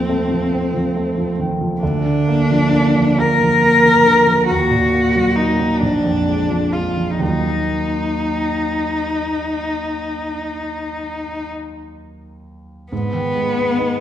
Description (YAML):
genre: classical, romantic duo for cello and grand piano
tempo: 41-47 BPM (dotted quarters)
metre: 12/8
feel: rubato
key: Eb minor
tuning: A4 = 440 Hz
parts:
  - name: rich cello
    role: melody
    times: 0.0-14.0 s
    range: B3 to Bb4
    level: -17 LUFS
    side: left 2 dB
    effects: none
  - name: warm concert grand piano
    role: accompaniment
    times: 0.0-14.0 s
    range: Bb1 to D#4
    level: -19 LUFS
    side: right 2 dB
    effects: none
room: wet recital hall reverb, RT60 1.7 s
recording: recorded in a church or concert hall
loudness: -15 LUFS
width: side -10 dB against mid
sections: 0.0-12.9 A section; 12.9-14.0 B section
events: none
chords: 0.0 F7/Eb; 1.8 Bb/D; 4.5 Ebm; 5.8 Bb7; 7.2 Ebm; 12.9 G#m